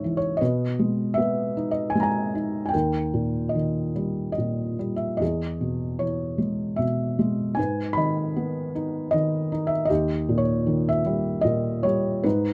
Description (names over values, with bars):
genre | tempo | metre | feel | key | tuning
classical, lyrical solo piano | 76 BPM | 3/4 | rubato | G# harmonic minor | A4 = 440 Hz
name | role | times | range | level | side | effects
felt-muted upright piano | solo | 0.0-12.5 s | C#2 to B5 | -25 LUFS | equal | none
room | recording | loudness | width
light reverb | close, detailed microphones | -25 LUFS | mono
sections
0.0-12.5 A section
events
none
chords
0.4 G#m/B; 2.7 D#; 5.2 E; 7.6 G#m; 9.9 D#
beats
| 0.41 1.18 1.96 | 2.74 3.55 4.38 | 5.22 6.02 6.81 | 7.58 8.37 9.14 | 9.90 10.67 11.46 | 12.25